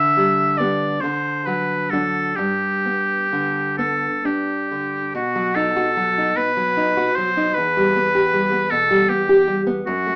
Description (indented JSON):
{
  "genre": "romantic duo for oboe and classical guitar",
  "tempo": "42-53 BPM (dotted quarters)",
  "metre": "6/8",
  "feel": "rubato",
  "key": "G major",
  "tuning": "A4 = 439 Hz",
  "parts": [
    { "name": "bright oboe", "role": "melody", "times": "0.0-10.2 s", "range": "F#4 to E5", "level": "-22 LUFS", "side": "equal", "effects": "none" },
    { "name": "nylon-string guitar", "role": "accompaniment", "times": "0.0-10.2 s", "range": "E2 to G4", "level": "-24 LUFS", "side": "equal", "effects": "none" }
  ],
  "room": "moderate studio ambience, RT60 0.5 s",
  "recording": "band playing live in one room, small speaker sound",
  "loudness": "-20 LUFS",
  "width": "mono",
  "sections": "0.0-5.2 A section; 5.2-10.2 B section",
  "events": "none",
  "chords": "0.0 G/D; 1.0 D; 2.4 G; 5.2 B7; 7.6 Em",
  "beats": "1.01 | 2.35 3.77 | 5.15 6.38 | 7.57 8.71 | 9.87"
}